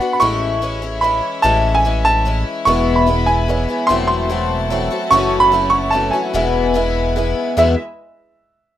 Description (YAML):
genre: folk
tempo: 147 BPM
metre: 3/4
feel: straight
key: E major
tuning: A4 = 440 Hz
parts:
  - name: clear upright piano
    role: melody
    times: 0.0-7.8 s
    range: E5 to C#6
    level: -16 LUFS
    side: right 2 dB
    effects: none
  - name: picked twelve-string acoustic guitar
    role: accompaniment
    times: 0.0-7.7 s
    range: E2 to F#4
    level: -20 LUFS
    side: left 7 dB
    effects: none
  - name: rich chamber string section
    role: sustained chords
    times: 0.0-7.8 s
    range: G#3 to B5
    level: -27 LUFS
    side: left 2 dB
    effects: none
  - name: chorused synth bass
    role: bass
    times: 0.2-7.8 s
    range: E1 to E2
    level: -21 LUFS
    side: equal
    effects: none
  - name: felt-muted upright piano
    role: accompaniment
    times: 2.7-7.8 s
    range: F#1 to E5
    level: -22 LUFS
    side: right 5 dB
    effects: none
room: light reverb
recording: rough home demo mix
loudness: -14 LUFS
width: side -12 dB against mid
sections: 0.0-7.6 A section; 7.6-8.8 B section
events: none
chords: 0.2 Amaj7; 2.7 E; 3.9 Am6/E; 5.1 F#m7; 6.3 E